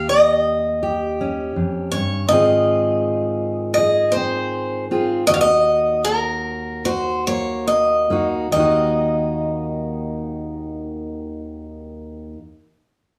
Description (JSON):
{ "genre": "acoustic folk duo or small band", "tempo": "70-82 BPM", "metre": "4/4", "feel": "straight", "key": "Eb dorian", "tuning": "A4 = 439 Hz", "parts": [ { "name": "picked acoustic archtop guitar", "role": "melody", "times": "0.0-12.3 s", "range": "Bb4 to F5", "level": "-20 LUFS", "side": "equal", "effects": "none" }, { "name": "fingerpicked steel-string acoustic guitar", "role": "accompaniment", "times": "0.0-12.4 s", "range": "Eb2 to Ab4", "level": "-25 LUFS", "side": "equal", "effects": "none" } ], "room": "wet large studio reverb, RT60 0.9 s", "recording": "band playing live in one room", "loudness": "-20 LUFS", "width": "mono", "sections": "0.0-8.5 A section; 8.5-11.9 B section", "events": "slowing down 2.3-8.5", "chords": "0.0 Eb7; 2.3 Ab6; 5.3 Ebm" }